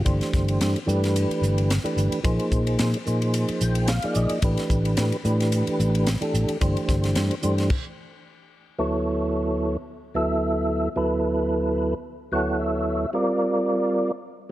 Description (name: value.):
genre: electric jazz fusion.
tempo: 110 BPM.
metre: 4/4.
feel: swing 54% on 16ths.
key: unclear.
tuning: A4 = 440 Hz.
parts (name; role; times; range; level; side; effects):
percussive tonewheel organ; accompaniment; 0.0-14.1 s; D2 to G5; -24 LUFS; right 1 dB; slow rotary speaker, chorus vibrato.
fingered electric bass; bass; 0.0-7.7 s; G1 to Bb2; -23 LUFS; equal; none.
tight funk drum kit; drums; 0.1-7.8 s; crash cymbal, hi-hat, kick drum, ride cymbal, snare drum; -28 LUFS; equal; none.
room: light reverb, small room ambience.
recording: none.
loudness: -21 LUFS.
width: side -15 dB against mid.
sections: 0.0-8.8 A section; 8.8-14.5 B section.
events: tonewheel organ fill 3.3-4.4, 12.1-13.2; stop 7.7-8.8.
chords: 0.1 Gsus24; 2.2 Bb9sus4; 4.4 A9sus4; 6.6 Gsus24; 8.8 Dmaj9; 13.2 Bbadd9.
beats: | 0.06 0.61 1.16 1.70 | 2.25 2.79 3.34 3.89 | 4.43 4.98 5.53 6.07 | 6.62 7.16 7.71 8.25 | 8.80 9.34 9.89 10.43 | 10.98 11.52 12.06 12.61 | 13.15 13.69.